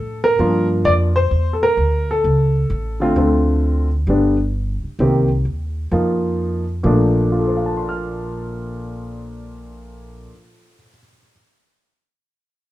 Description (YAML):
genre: jazz piano trio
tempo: 130 BPM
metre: 4/4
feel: swing 66% on 8ths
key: Bb major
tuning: A4 = 440 Hz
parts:
  - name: warm upright piano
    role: melody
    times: 0.0-11.3 s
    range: Bb2 to F6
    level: -18 LUFS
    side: equal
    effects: none
  - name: upright bass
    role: bass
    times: 0.0-10.3 s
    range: G1 to A2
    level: -20 LUFS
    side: equal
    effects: none
room: wet studio reverb, RT60 0.5 s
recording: heard from further back in the room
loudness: -16 LUFS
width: side -15 dB against mid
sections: 0.0-3.2 A section; 3.2-6.8 B section; 6.8-10.5 C section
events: none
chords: 0.0 Bbmaj7; 1.3 Bbmaj9#11; 2.2 A; 3.2 Dm7; 4.1 G; 5.0 Cm7; 5.9 F7sus4; 6.8 Bbmaj7